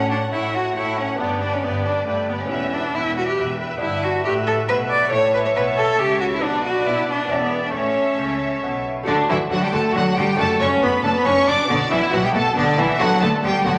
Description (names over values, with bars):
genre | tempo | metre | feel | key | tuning
classical, baroque-style concerto movement with solo episodes | 138 BPM | 3/4 | straight | D major from 3.8 s | A4 = 439 Hz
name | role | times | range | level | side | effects
rich cello | melody | 0.0-13.8 s | D3 to D5 | -24 LUFS | equal | none
rich chamber violin section | melody | 0.0-13.8 s | D5 to D6 | -30 LUFS | equal | none
rich chamber violin section | second line | 0.0-13.8 s | D4 to F#5 | -27 LUFS | equal | none
lute | accompaniment | 0.0-13.8 s | E2 to G4 | -29 LUFS | equal | none
rich studio viola section | accompaniment | 0.0-13.7 s | B3 to D5 | -32 LUFS | equal | none
clear chamber cello section | bass | 0.0-13.7 s | E2 to B3 | -32 LUFS | equal | none
rich studio double bass section | bass | 0.0-13.7 s | E1 to B2 | -35 LUFS | equal | none
room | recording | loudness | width
wet recital hall reverb, RT60 1.9 s | none | -20 LUFS | mono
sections
0.0-9.1 A section; 9.1-13.8 B section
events
none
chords
0.0 F#m/A; 1.2 G; 2.5 Em; 3.8 Em7/G; 5.1 A; 6.4 Bm; 7.3 Em7; 7.7 A; 9.1 D; 10.4 D/F#; 11.7 Bm; 13.0 Bm/D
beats
0.32 0.76 | 1.20 1.63 2.07 | 2.50 2.94 3.38 | 3.81 4.25 4.68 | 5.12 5.55 5.99 | 6.43 6.86 7.30 | 7.74 8.19 8.63 | 9.07 9.51 9.95 | 10.39 10.82 11.26 | 11.70 12.13 12.57 | 13.00 13.44